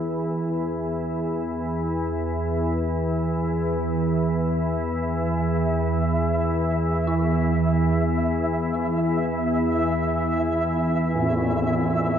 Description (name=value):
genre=dark ambient drone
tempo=free time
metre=none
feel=none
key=unclear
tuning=A4 = 440 Hz
part: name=dark detuned synth bell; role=arpeggios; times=0.0-12.2 s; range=E4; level=-39 LUFS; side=equal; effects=none
part: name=organ-like drone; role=drone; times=0.0-12.2 s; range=E2 to E3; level=-22 LUFS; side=equal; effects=ensemble chorus, built-in reverb
part: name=flickering grainy texture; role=texture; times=5.0-12.2 s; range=E5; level=-30 LUFS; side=right 1 dB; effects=built-in reverb
part: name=tam-tam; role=percussion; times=11.2-11.4 s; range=none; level=-25 LUFS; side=right 1 dB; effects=low-pass filter on cymbals
room=wet cathedral reverb, RT60 5.7 s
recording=worn, warbling old tape, cassette tape, warbly pitch drift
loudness=-21 LUFS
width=side -8 dB against mid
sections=0.0-12.2 A section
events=none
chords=0.0 Esus4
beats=free time